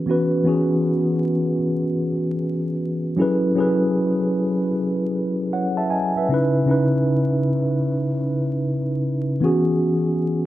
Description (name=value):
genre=hip hop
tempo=77 BPM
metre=4/4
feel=swing 64% on 16ths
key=E major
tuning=A4 = 439 Hz
part: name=mellow tine electric piano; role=solo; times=0.0-10.5 s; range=C#3 to A5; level=-19 LUFS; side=equal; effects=medium stereo tremolo, cassette tape, low-pass filter
room=wet studio reverb, RT60 0.6 s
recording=dark, warm production, vinyl crackle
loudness=-19 LUFS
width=side -14 dB against mid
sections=0.0-9.4 A section; 9.4-10.5 B section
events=none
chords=0.0 E69; 3.2 F#m11; 6.3 C#m9; 9.4 E69